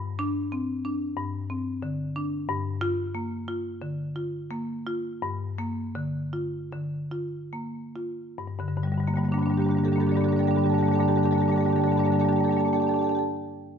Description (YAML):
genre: classical, contemporary piece for solo marimba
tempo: 69-92 BPM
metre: 4/4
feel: rubato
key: G minor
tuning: A4 = 437 Hz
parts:
  - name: marimba with medium hard mallets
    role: solo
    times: 0.0-13.2 s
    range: G2 to D6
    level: -24 LUFS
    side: equal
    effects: none
room: moderate stone room reverb, RT60 1.4 s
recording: nothing above 7.7 kHz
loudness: -24 LUFS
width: side -7 dB against mid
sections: 0.0-8.4 A section; 8.4-11.8 B section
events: slowing down 1.2-8.4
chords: 0.0 D7sus4/G; 2.5 Gm7; 8.4 Gmadd9